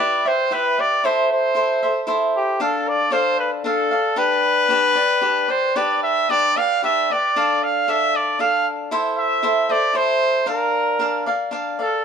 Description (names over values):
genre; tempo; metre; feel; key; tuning
mexican folk, mariachi; 115 BPM; 3/4; rubato; unclear; A4 = 440 Hz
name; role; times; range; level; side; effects
bright trumpet; melody; 0.0-12.0 s; G4 to F5; -18 LUFS; equal; plate reverb
cavaquinho; accompaniment; 0.0-12.0 s; D4 to F5; -22 LUFS; equal; none
room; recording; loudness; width
moderate studio reverb, RT60 0.6 s; dark, warm production; -17 LUFS; side -7 dB against mid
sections
0.0-12.0 A section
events
none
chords
0.0 Em; 1.0 Am; 2.6 Dm; 4.2 G; 7.4 Dm; 8.9 Am; 10.5 Bb